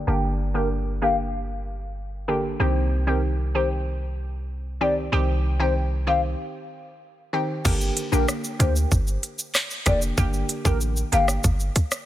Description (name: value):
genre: dancehall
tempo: 95 BPM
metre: 4/4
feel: straight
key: G minor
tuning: A4 = 440 Hz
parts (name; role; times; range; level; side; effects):
- clean 808-style bass; bass; 0.0-11.7 s; F1 to D2; -24 LUFS; equal; none
- analog pluck; accompaniment; 0.1-11.3 s; D3 to G4; -27 LUFS; equal; chorus, phaser, sidechain pumping, low-pass filter
- mellow hollow wooden flute; melody; 0.5-11.3 s; Bb4 to F5; -28 LUFS; left 3 dB; low-pass filter, digital delay
- island pop drum kit; drums; 7.7-12.1 s; crash cymbal, handclaps, hi-hat, kick drum, rim click, shaker; -23 LUFS; equal; none
room: little or no reverb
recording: none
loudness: -21 LUFS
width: side -13 dB against mid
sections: 0.0-7.7 A section; 7.7-12.1 B section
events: filter sweep 0.0-7.7; break 6.4-7.7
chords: 0.0 Gm; 2.6 Cm; 7.7 Gm